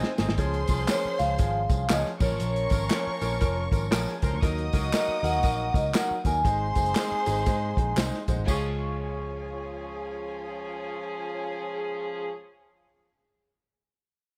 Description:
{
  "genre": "uptempo 1960s-style soul",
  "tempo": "118 BPM",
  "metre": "4/4",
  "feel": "swing 61% on 8ths",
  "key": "Db major",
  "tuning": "A4 = 440 Hz",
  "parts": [
    { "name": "vibraphone with soft mallets", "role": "melody", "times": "0.0-12.3 s", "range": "C5 to Db6", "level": "-32 LUFS", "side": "equal", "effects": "none" },
    { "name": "warm studio violin section", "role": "second line", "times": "0.0-12.3 s", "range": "Eb4 to Eb6", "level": "-39 LUFS", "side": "equal", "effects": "none" },
    { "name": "warm upright piano", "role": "accompaniment", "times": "0.0-12.3 s", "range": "F3 to Bb5", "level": "-36 LUFS", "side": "equal", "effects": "none" },
    { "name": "warm soul drum kit", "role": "drums", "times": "0.0-8.6 s", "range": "crash cymbal, hi-hat, kick drum, snare drum", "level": "-29 LUFS", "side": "equal", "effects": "none" },
    { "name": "vintage muted picked electric bass", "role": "bass", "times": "0.2-12.3 s", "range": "F1 to Ab2", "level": "-33 LUFS", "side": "equal", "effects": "none" },
    { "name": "tambourine and handclaps", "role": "percussion", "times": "0.2-8.8 s", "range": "none", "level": "-40 LUFS", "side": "equal", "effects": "none" },
    { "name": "mellow horn section", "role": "second line", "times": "0.4-12.3 s", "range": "F3 to Bb4", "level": "-38 LUFS", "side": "equal", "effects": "slapback echo" }
  ],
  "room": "light reverb, small room ambience",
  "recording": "none",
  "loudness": "-27 LUFS",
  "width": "mono",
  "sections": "0.4-8.5 A section; 8.5-12.6 B section",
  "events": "drum fill 0.0-0.4; upright piano fill 7.5-8.5",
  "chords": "0.4 Db; 2.1 Bbm; 4.4 Ebm; 6.5 Ab; 8.5 Db"
}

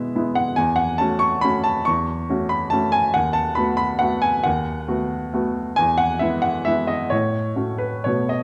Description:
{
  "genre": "classical, piano waltz",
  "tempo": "138 BPM",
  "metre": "3/4",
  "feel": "uneven beats, rubato",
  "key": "unclear",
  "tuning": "A4 = 440 Hz",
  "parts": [
    { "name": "clear baby grand piano", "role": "solo", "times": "0.0-8.4 s", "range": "D#2 to C#6", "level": "-21 LUFS", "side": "equal", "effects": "none" }
  ],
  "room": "moderate recital hall reverb, RT60 1.5 s",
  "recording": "dark, warm production",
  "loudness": "-21 LUFS",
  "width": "mono",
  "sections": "0.0-8.4 A section",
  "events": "none",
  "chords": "0.0 E; 0.6 F#m7/E; 3.1 B7/D#; 5.8 E; 7.1 F#m/A"
}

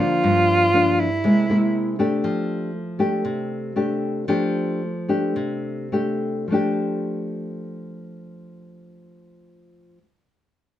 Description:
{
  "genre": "bossa nova",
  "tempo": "102-120 BPM",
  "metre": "4/4",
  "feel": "straight",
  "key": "F major",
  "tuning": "A4 = 440 Hz",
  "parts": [
    { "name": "breathy alto saxophone", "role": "melody", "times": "0.0-2.0 s", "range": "E4 to F4", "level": "-19 LUFS", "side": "right 1 dB", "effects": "none" },
    { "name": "nylon-string guitar", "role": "accompaniment", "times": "0.0-10.0 s", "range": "G2 to G4", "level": "-21 LUFS", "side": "left 1 dB", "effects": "none" }
  ],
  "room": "moderate studio ambience, RT60 0.5 s",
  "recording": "none",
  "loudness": "-20 LUFS",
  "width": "side -12 dB against mid",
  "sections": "0.0-2.2 A section; 2.2-6.5 B section; 6.5-10.8 C section",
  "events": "slowing down 2.2-6.5",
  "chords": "0.2 Gm7; 1.2 C7b13; 2.2 F69"
}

